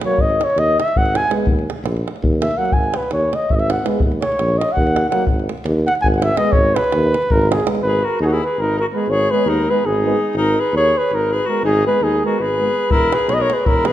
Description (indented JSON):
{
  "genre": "balkan folk, Balkan brass band",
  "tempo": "330 BPM (eighths)",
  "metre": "7/8",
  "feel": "straight",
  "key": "G# minor",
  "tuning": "A4 = 440 Hz",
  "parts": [
    { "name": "clear trombone", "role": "accompaniment", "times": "0.0-12.7 s", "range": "A#3 to B3", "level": "-26 LUFS", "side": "left 5 dB", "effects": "none" },
    { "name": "warm euphonium", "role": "accompaniment", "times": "0.0-12.7 s", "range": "F#3 to G#3", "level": "-25 LUFS", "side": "right 5 dB", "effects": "none" },
    { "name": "davul", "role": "percussion", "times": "0.0-7.8, 12.9-13.9 s", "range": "none", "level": "-20 LUFS", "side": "equal", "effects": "none" },
    { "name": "mellow flugelhorn", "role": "melody", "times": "0.1-13.9 s", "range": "F#4 to G#5", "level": "-18 LUFS", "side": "equal", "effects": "none" },
    { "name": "mellow tuba", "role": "bass", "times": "0.2-13.9 s", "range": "E1 to D#2", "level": "-21 LUFS", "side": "equal", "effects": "none" },
    { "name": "bright alto saxophone", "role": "second line", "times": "7.8-13.9 s", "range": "D#4 to B4", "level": "-23 LUFS", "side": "left 6 dB", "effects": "none" }
  ],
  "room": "moderate recital hall reverb, RT60 1.5 s",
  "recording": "minimal, uncompressed stereo recording",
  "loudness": "-15 LUFS",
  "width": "side -12 dB against mid",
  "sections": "0.0-7.8 A section; 7.8-13.9 B section",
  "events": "flugelhorn solo 0.0-7.8",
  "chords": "0.2 G#5; 1.5 D#m; 2.7 G#5; 4.0 D#m; 5.3 G#m; 12.9 E"
}